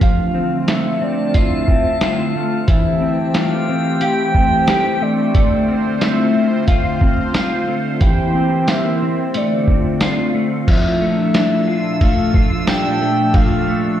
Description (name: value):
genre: dream pop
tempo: 90 BPM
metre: 4/4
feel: straight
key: D minor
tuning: A4 = 440 Hz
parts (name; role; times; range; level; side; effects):
- soft octave-layered synth lead; melody; 0.0-14.0 s; D5 to G5; -22 LUFS; equal; chorus, phaser, digital delay
- phased analog pad; sustained chords; 0.0-14.0 s; Bb2 to C5; -21 LUFS; right 1 dB; phaser, chorus
- mellow electric guitar; arpeggios; 0.0-14.0 s; E3 to G4; -19 LUFS; left 2 dB; ensemble chorus, digital delay
- lo-fi sampler-style drum kit; drums; 0.0-13.5 s; crash cymbal, hi-hat, kick drum, ride cymbal, snare drum, tambourine; -17 LUFS; equal; none
- drifting glass-harmonics texture; texture; 1.0-5.4, 11.6-13.8 s; G5 to E6; -28 LUFS; right 1 dB; chorus, built-in reverb, digital delay
room: light reverb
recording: played on a big sound system in a bare room, large studio reverb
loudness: -14 LUFS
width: side -11 dB against mid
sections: 0.0-10.7 A section; 10.7-14.0 B section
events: none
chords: 0.0 Dm7; 2.7 Am7; 5.3 Dm7; 8.0 C7; 9.3 Dm7; 10.7 Bbmaj7